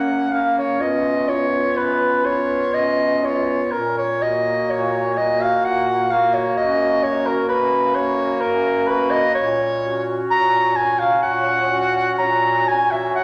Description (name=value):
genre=classical, lyrical piece for single-reed quartet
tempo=63 BPM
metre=3/4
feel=uneven beats, rubato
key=F# major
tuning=A4 = 440 Hz
part: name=mellow soprano saxophone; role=melody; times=0.0-13.2 s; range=A#4 to A#5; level=-21 LUFS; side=equal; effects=none
part: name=warm clarinet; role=second line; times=0.0-13.2 s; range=C#4 to F#4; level=-28 LUFS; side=equal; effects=none
part: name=warm tenor saxophone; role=accompaniment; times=0.0-13.2 s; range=A#3 to C#4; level=-29 LUFS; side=equal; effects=none
part: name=clear bass clarinet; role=bass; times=0.0-13.2 s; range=F#2 to A#2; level=-29 LUFS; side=equal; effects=none
room=wet scoring stage reverb, RT60 1.9 s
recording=none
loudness=-19 LUFS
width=mono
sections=0.0-13.2 A section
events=none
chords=0.0 F#; 0.8 C#9; 3.7 F#/A#; 6.6 F#; 9.4 F#/A#